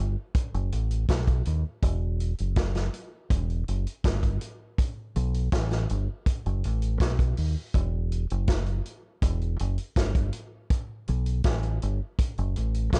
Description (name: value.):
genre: lovers rock reggae.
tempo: 81 BPM.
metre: 4/4.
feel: straight.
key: E minor.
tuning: A4 = 438 Hz.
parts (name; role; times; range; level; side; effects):
deep dub fingered electric bass; bass; 0.0-13.0 s; E1 to D#2; -29 LUFS; equal; none.
vintage drum kit; drums; 0.3-13.0 s; hi-hat, kick drum, snare drum; -29 LUFS; equal; none.
room: little or no reverb.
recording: dark, warm production, nothing above 10.3 kHz.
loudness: -28 LUFS.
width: mono.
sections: 0.0-13.0 A section.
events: none.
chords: none.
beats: 0.34 1.08 | 1.82 2.56 3.30 4.04 | 4.78 5.52 6.26 7.00 | 7.74 8.48 9.22 9.96 | 10.70 11.45 12.19 12.93.